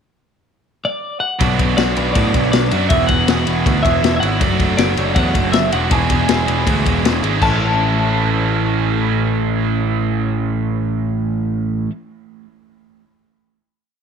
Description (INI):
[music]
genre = indie rock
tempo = 160 BPM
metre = 4/4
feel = straight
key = A major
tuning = A4 = 440 Hz
[part]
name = twelve-string electric guitar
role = melody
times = 0.8-11.9 s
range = D5 to A5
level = -21 LUFS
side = left 2 dB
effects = tape echo
[part]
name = biting overdriven guitar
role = riff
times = 1.4-11.9 s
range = E2 to F#4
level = -20 LUFS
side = right 12 dB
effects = lush chorus
[part]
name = overdriven electric guitar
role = riff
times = 1.4-11.9 s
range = A2 to C#5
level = -24 LUFS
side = left 12 dB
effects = none
[part]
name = growling picked electric bass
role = bass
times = 1.4-11.9 s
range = E1 to A2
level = -20 LUFS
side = equal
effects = overdrive
[part]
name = vintage drum kit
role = drums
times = 1.4-7.5 s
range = crash cymbal, kick drum, ride cymbal, snare drum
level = -19 LUFS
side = left 4 dB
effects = none
[sound]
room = small room ambience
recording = 1960s-style stereo with parts hard left and right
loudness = -14 LUFS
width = side -7 dB against mid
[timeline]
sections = 0.0-1.4 pickup bar; 1.4-7.4 pre-chorus; 7.4-10.4 final chord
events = none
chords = 0.0 N.C.; 1.4 Bm; 2.9 Esus2; 4.4 Dmaj7/F#; 5.9 E7; 7.4 A